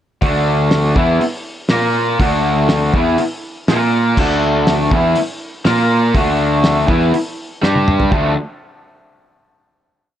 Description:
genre	garage rock duo or trio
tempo	122 BPM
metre	4/4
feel	straight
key	D minor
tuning	A4 = 440 Hz
part	raw garage guitar	riff	0.2-8.3 s	D3 to Bb4	-16 LUFS	equal	overdrive
part	fuzz picked electric bass	bass	0.2-8.3 s	D2 to Bb2	-18 LUFS	equal	overdrive
part	cloth-damped thuddy drum kit	drums	0.2-8.2 s	crash cymbal, hi-hat, kick drum, snare drum, toms	-19 LUFS	equal	vintage 12-bit sampler grit
room	light reverb, small room reverb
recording	cassette tape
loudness	-13 LUFS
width	side -11 dB against mid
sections	0.2-8.1 riff; 8.1-10.1 final chord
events	drum fill 7.6-8.1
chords	0.2 D5; 1.7 Bb5; 2.2 D5; 3.7 Bb5; 4.2 D5; 5.7 Bb5; 6.1 D5; 7.6 G5; 8.1 Dm

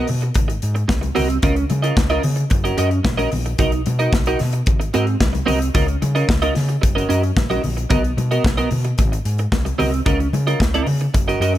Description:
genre	disco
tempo	111 BPM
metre	4/4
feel	straight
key	Db major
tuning	A4 = 445 Hz
part	clean electric guitar	accompaniment	0.0-11.6 s	Cb4 to Eb5	-21 LUFS	right 2 dB	analog chorus
part	overdriven fingered electric bass	bass	0.1-11.6 s	Gb1 to Db3	-21 LUFS	equal	none
part	modern studio drum kit	drums	0.1-11.6 s	hi-hat, kick drum, snare drum	-20 LUFS	equal	none
part	congas	percussion	0.1-11.5 s	none	-29 LUFS	left 3 dB	none
room	little or no reverb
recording	none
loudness	-16 LUFS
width	side -13 dB against mid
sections	0.0-11.6 A section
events	none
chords	0.4 Ab9; 1.4 Db69; 2.5 Gb6; 3.6 Cbmaj7; 4.7 Ab9; 5.7 Db69; 6.8 Gb6; 7.9 Cbmaj7; 9.0 Ab9; 10.1 Db69

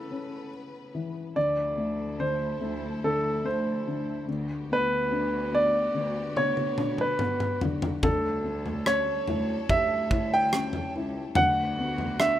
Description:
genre	pop ballad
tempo	72 BPM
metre	4/4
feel	straight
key	unclear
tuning	A4 = 440 Hz
part	clear concert grand piano	melody	0.0-12.4 s	A4 to G5	-26 LUFS	right 1 dB	none
part	felt-muted upright piano	accompaniment	0.0-12.4 s	A2 to G4	-32 LUFS	left 3 dB	none
part	clear studio string section	sustained chords	0.0-12.4 s	C#3 to C#5	-43 LUFS	left 1 dB	none
part	warm chamber cello section	bass	1.4-12.4 s	C#2 to D2	-35 LUFS	right 1 dB	none
part	modern studio drum kit	drums	6.4-12.4 s	kick drum, rim click, toms	-30 LUFS	equal	none
room	light reverb, small room reverb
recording	rough home demo mix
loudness	-25 LUFS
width	side -12 dB against mid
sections	0.0-1.4 A section; 1.4-12.4 B section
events	drum fill 6.4-8.0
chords	0.0 Aadd9; 1.4 Fmaj7/D; 4.3 Gmaj7/D; 8.0 A7/D; 11.4 Gmaj7/D

